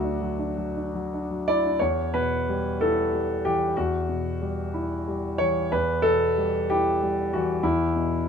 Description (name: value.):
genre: neoclassical minimalist piano.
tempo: 62 BPM (dotted quarters).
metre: 6/8.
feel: uneven beats, rubato.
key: E dorian.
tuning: A4 = 440 Hz.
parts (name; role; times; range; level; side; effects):
warm concert grand piano; solo; 0.0-8.3 s; D2 to D5; -23 LUFS; equal; none.
room: little or no reverb.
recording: minimal, uncompressed stereo recording.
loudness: -23 LUFS.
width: side -6 dB against mid.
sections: 0.0-1.8 A section; 1.8-8.3 B section.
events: none.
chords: 0.0 Dadd9; 1.8 Em.